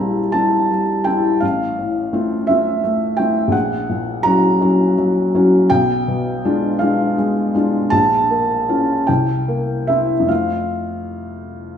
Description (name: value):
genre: classical, romantic nocturne for solo piano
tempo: 44-58 BPM (dotted quarters)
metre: 6/8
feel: rubato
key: F major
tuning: A4 = 440 Hz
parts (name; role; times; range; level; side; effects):
- felt-muted upright piano; solo; 0.0-11.8 s; A1 to Bb5; -15 LUFS; equal; none
room: wet stone room reverb, RT60 1.2 s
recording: minimal, uncompressed stereo recording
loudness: -15 LUFS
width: side -8 dB against mid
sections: 0.0-11.8 A section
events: none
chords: 0.0 C7/Bb; 1.4 F/A; 3.5 Gb/Bb; 5.7 Bdim7; 7.9 Bbm; 9.1 C7; 10.3 F